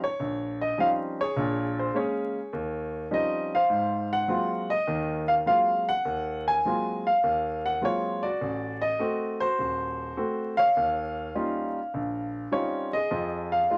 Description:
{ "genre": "solo jazz", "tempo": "102 BPM", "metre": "4/4", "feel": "swing 69% on 8ths", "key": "unclear", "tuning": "A4 = 440 Hz", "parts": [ { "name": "warm grand piano", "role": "solo", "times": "0.0-13.8 s", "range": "Eb1 to Ab5", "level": "-27 LUFS", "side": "equal", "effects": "none" } ], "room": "moderate studio ambience, RT60 0.5 s", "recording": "vinyl crackle", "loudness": "-27 LUFS", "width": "mono", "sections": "0.0-13.8 A section", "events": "none", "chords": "0.0 Eb13; 1.4 Bbm7; 2.5 Eb13; 3.7 Ab13; 8.4 Adim7; 10.8 Eb13; 13.1 Fm7", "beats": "0.20 0.79 | 1.37 1.96 2.54 3.13 | 3.72 4.30 4.89 5.48 | 6.06 6.65 7.24 7.83 | 8.41 9.00 9.59 10.18 | 10.77 11.35 11.94 12.53 | 13.12 13.71" }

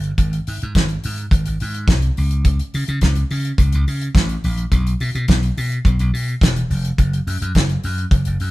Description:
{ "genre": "disco", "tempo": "106 BPM", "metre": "4/4", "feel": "straight", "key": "unclear", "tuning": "A4 = 440 Hz", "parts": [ { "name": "slap bass", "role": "bass", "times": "0.0-8.5 s", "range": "E1 to C#3", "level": "-19 LUFS", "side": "equal", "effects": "none" }, { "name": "damped 70s drum kit", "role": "drums", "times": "0.0-8.5 s", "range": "hi-hat, kick drum, snare drum", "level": "-18 LUFS", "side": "equal", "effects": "none" } ], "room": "light reverb", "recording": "band playing live in one room", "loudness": "-16 LUFS", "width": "side -18 dB against mid", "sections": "0.0-8.5 A section", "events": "none", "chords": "none", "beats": "| 0.18 0.75 1.31 1.88 | 2.45 3.01 3.58 4.15 | 4.71 5.28 5.85 6.41 | 6.98 7.55 8.11" }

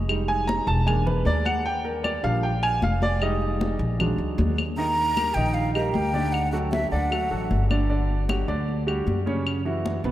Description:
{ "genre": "Afro-Cuban jazz", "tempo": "154 BPM", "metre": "4/4", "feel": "straight", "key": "Eb major", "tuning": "A4 = 440 Hz", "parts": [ { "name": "upright bass", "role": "bass", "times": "0.0-10.1 s", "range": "Fb1 to Gb2", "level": "-26 LUFS", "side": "equal", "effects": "none" }, { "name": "warm baby grand piano", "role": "accompaniment", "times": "0.1-10.1 s", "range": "Cb3 to Bb5", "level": "-26 LUFS", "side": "right 2 dB", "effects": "none" }, { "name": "claves", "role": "percussion", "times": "0.1-9.7 s", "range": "none", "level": "-35 LUFS", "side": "left 4 dB", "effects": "none" }, { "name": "congas", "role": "percussion", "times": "0.1-10.1 s", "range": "none", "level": "-32 LUFS", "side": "left 2 dB", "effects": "none" }, { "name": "breathy mellow silver concert flute", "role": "melody", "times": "4.8-7.7 s", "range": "Eb5 to Bb5", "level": "-27 LUFS", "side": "equal", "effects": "none" } ], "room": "moderate cathedral reverb, RT60 4.8 s", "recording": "in a vast, echoing space", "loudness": "-22 LUFS", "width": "side -13 dB against mid", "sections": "0.0-4.8 A section; 4.8-10.1 B section", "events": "grand piano solo 0.0-4.8", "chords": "0.1 Fm7; 0.9 E7#11; 1.7 Ebmaj7; 3.2 Fm7; 4.0 Bb7alt; 4.8 Ebmaj7; 6.3 D; 7.9 G5; 9.5 Gb5", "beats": "| 0.10 0.48 0.88 1.26 | 1.66 2.04 2.44 2.83 | 3.22 3.61 4.00 4.39 | 4.78 5.17 5.56 5.95 | 6.34 6.73 7.12 7.51 | 7.90 8.29 8.68 9.07 | 9.46 9.85" }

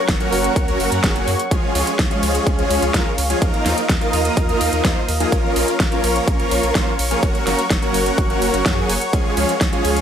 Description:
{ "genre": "EDM, festival progressive house", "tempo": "126 BPM", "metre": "4/4", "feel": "straight", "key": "unclear", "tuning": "A4 = 441 Hz", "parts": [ { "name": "lush unison pad", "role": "sustained chords", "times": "0.0-10.0 s", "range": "Ab4 to Eb6", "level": "-24 LUFS", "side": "left 1 dB", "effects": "chorus, sidechain pumping" }, { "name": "saturated sub bass", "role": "bass", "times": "0.1-10.0 s", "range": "Gb1 to Gb2", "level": "-25 LUFS", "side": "equal", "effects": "sidechain pumping" }, { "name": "big-room dance drum kit", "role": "drums", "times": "0.1-10.0 s", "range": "hi-hat, ride cymbal, snare drum", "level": "-24 LUFS", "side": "right 1 dB", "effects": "overdrive" }, { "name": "electronic kick drum", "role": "drums", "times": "0.1-9.7 s", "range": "none", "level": "-20 LUFS", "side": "equal", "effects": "overdrive" }, { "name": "supersaw chords", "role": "riff", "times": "0.2-10.0 s", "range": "F3 to C5", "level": "-20 LUFS", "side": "equal", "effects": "wide subtle chorus, sidechain pumping, digital delay" } ], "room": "light reverb, digital ambience", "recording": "none", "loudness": "-16 LUFS", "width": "side -8 dB against mid", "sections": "0.0-10.0 A section", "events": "none", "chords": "0.0 Gb; 1.5 Db; 3.4 Ebsus2; 5.3 Bbm; 7.2 Gb; 9.1 Db", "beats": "0.09 0.56 1.04 | 1.51 1.99 2.47 2.94 | 3.42 3.90 4.37 4.85 | 5.32 5.80 6.28 6.75 | 7.23 7.70 8.18 8.66 | 9.13 9.61" }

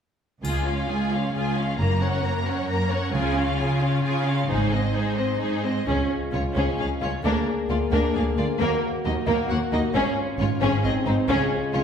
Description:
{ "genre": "cinematic, heroic adventure film score", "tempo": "133 BPM", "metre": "3/4", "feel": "straight", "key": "Db major", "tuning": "A4 = 440 Hz", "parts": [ { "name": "rich symphonic violin section", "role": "melody", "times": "0.4-11.8 s", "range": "Ab4 to Bb5", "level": "-32 LUFS", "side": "left 2 dB", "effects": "none" }, { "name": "warm symphonic violin section", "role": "second line", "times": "0.4-11.8 s", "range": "Bb3 to Db5", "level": "-29 LUFS", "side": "left 3 dB", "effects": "none" }, { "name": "rich symphonic viola section", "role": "accompaniment", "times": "0.4-11.8 s", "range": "Bb3 to F4", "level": "-29 LUFS", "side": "right 2 dB", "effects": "none" }, { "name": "clear symphonic cello section", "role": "bass", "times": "0.4-11.8 s", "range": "Db2 to Db3", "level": "-27 LUFS", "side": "right 1 dB", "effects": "none" }, { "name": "rich symphonic double bass section", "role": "bass", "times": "0.4-11.8 s", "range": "Gb1 to Eb2", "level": "-27 LUFS", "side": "right 1 dB", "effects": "none" }, { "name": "triangle", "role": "percussion", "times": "0.4-1.3 s", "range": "none", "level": "-43 LUFS", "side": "left 3 dB", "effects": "none" }, { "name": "mellow French horn section", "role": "sustained chords", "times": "5.9-11.8 s", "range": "Ab3 to Ab4", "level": "-28 LUFS", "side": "left 2 dB", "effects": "none" } ], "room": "wet scoring stage reverb, RT60 1.5 s", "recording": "heard from further back in the room", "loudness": "-21 LUFS", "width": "side -7 dB against mid", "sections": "0.4-5.9 A section; 5.9-11.8 B section", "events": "build-up 5.9-11.8", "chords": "0.4 Db; 1.8 Gb; 3.1 Db; 4.5 Ab; 5.9 Db; 7.2 Bb7/D; 8.6 Ebm; 9.9 Db/Ab; 10.8 Ab; 11.3 Db", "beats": "| 0.44 0.89 1.34 | 1.79 2.24 2.69 | 3.14 3.59 4.04 | 4.49 4.95 5.41 | 5.87 6.33 6.79 | 7.24 7.69 8.15 | 8.60 9.05 9.50 | 9.95 10.39 10.84 | 11.29 11.74" }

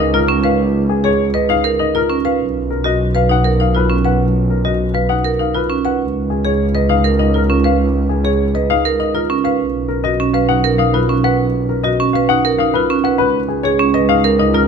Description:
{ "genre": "classical, minimalist pattern music", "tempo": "100 BPM", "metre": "3/4", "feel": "straight", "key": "B lydian", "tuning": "A4 = 440 Hz", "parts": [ { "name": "warm baby grand piano", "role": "melody", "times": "0.0-14.7 s", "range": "G#4 to F#5", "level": "-19 LUFS", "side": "left 12 dB", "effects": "none" }, { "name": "marimba with hard mallets", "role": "arpeggios", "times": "0.0-14.7 s", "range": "C#4 to B4", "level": "-16 LUFS", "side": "right 6 dB", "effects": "none" }, { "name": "rich studio double bass section", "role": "bass", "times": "0.0-14.7 s", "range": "B1 to C#2", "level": "-18 LUFS", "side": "equal", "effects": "none" } ], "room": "light reverb", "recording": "close, detailed microphones", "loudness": "-13 LUFS", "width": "side -6 dB against mid", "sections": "0.0-14.7 A section", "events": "none", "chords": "0.0 C#9; 2.4 B; 6.0 C#9; 9.6 Badd9; 13.2 C#7sus2", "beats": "0.00 | 0.60 1.20 1.80 | 2.40 3.00 3.60 | 4.20 4.80 5.40 | 6.00 6.60 7.20 | 7.80 8.40 9.00 | 9.60 10.20 10.80 | 11.40 12.00 12.60 | 13.20 13.80 14.40" }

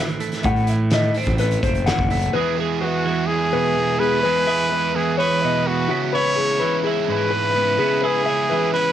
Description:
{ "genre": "math rock and midwest emo", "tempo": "127 BPM", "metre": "4/4", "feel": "straight", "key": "E major", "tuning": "A4 = 440 Hz", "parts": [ { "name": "twelve-string electric guitar", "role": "accompaniment", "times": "0.0-8.9 s", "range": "E2 to G#4", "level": "-25 LUFS", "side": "right 6 dB", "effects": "cassette tape" }, { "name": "mellow electric guitar", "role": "arpeggios", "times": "0.0-8.9 s", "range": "F#4 to F#5", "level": "-23 LUFS", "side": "left 7 dB", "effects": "cassette tape" }, { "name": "loose indie drum kit", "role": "drums", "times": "0.1-2.3 s", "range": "hi-hat, kick drum, snare drum", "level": "-23 LUFS", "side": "equal", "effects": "cassette tape" }, { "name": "fuzz fingered electric bass", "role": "bass", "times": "0.4-2.3 s", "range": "F#1 to A2", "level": "-22 LUFS", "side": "equal", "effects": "overdrive" }, { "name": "biting overdriven guitar", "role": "riff", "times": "2.3-8.9 s", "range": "C#3 to E4", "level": "-26 LUFS", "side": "right 8 dB", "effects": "cassette tape" }, { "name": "clear trumpet", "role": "melody", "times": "2.8-8.9 s", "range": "F#4 to C#5", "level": "-21 LUFS", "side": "equal", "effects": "cassette tape" } ], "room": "light reverb", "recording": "home recording on cassette", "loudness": "-17 LUFS", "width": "side -10 dB against mid", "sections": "0.0-2.4 A section; 2.4-8.9 B section", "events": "none", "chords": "0.0 Am6; 2.4 E; 5.9 C#m7", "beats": "| 0.46 0.93 1.40 1.88 | 2.35 2.82 3.30 3.77 | 4.24 4.71 5.19 5.66 | 6.14 6.61 7.08 7.56 | 8.03 8.51" }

